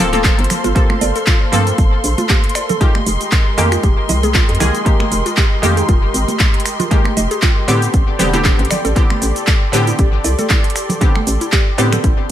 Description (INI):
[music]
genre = deep house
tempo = 117 BPM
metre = 4/4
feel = swing 55% on 16ths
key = unclear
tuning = A4 = 441 Hz
[part]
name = warm analog pad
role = sustained chords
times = 0.0-12.3 s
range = Ab3 to F5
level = -24 LUFS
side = left 1 dB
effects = chorus, sidechain pumping
[part]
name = filtered dub chord stab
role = stabs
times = 0.0-12.3 s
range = D3 to A4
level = -20 LUFS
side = equal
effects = chorus, sidechain pumping, ping-pong delay
[part]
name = hollow knocking FM bass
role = bass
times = 0.0-12.1 s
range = D1 to A2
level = -18 LUFS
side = equal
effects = sidechain pumping
[part]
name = dark symphonic violin section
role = texture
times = 0.0-12.3 s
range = C6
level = -26 LUFS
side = equal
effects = none
[part]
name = house drum kit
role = drums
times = 0.1-12.2 s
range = cabasa, finger snaps, handclaps, hi-hat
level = -20 LUFS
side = equal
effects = small room ambience
[part]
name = congas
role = percussion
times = 0.1-12.0 s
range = none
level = -24 LUFS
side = right 3 dB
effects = sidechain pumping on perc
[part]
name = electronic kick drum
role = drums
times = 0.2-12.2 s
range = none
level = -14 LUFS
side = equal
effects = small room ambience
[part]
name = mallet-like synth pluck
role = arpeggios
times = 0.6-12.1 s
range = E4 to Eb5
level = -24 LUFS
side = right 2 dB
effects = chorus, sidechain pumping, ping-pong delay
[sound]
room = light reverb, digital ambience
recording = none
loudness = -12 LUFS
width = side -11 dB against mid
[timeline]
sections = 0.0-12.3 A section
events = none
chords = 0.0 Gm11; 2.8 Fm11; 7.7 Am11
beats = 0.24 | 0.76 1.27 1.78 2.30 | 2.81 3.32 3.83 4.35 | 4.86 5.37 5.88 6.40 | 6.91 7.42 7.94 8.45 | 8.96 9.47 9.99 10.50 | 11.01 11.53 12.04